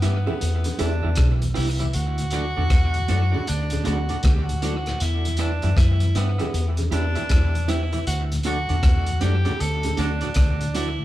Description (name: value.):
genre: roots reggae.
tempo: 78 BPM.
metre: 4/4.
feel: swing 63% on 16ths.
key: unclear.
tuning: A4 = 440 Hz.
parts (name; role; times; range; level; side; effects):
clear tenor saxophone; melody; 0.0-11.0 s; B3 to A4; -29 LUFS; right 1 dB; none.
electric guitar at the edge of break-up; accompaniment; 0.0-10.9 s; D4 to E5; -32 LUFS; right 4 dB; dub echo.
mellow tonewheel organ; accompaniment; 0.0-11.0 s; D2 to E4; -33 LUFS; left 2 dB; slow rotary speaker, dub echo.
vintage muted fingered electric bass; bass; 0.0-11.0 s; B1 to G2; -23 LUFS; equal; none.
crunchy breakbeat drum kit; drums; 0.0-11.0 s; hi-hat, kick drum, rim click; -23 LUFS; equal; none.
bongos; percussion; 0.0-11.0 s; none; -32 LUFS; right 3 dB; none.
room: light reverb.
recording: band playing live in one room.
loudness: -20 LUFS.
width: side -15 dB against mid.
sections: 0.0-11.0 A section.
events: none.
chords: 0.0 Em; 1.9 D; 5.0 Em; 8.1 D.